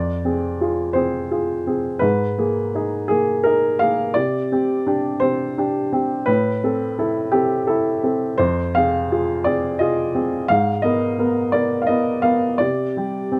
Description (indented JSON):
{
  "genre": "neoclassical minimalist piano",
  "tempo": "85 BPM",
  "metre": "3/4",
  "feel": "rubato",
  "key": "F dorian",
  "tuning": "A4 = 440 Hz",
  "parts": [
    { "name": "warm upright piano", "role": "solo", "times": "0.0-13.4 s", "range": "F2 to F5", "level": "-20 LUFS", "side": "equal", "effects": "none" }
  ],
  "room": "light reverb",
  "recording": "none",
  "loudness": "-20 LUFS",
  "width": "mono",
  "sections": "0.0-13.4 A section",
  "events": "none",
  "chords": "0.0 Fm; 2.0 Abmadd9; 4.2 Csus2; 6.3 Amadd9; 8.4 Fm; 10.5 Abmadd9; 12.6 Csus2"
}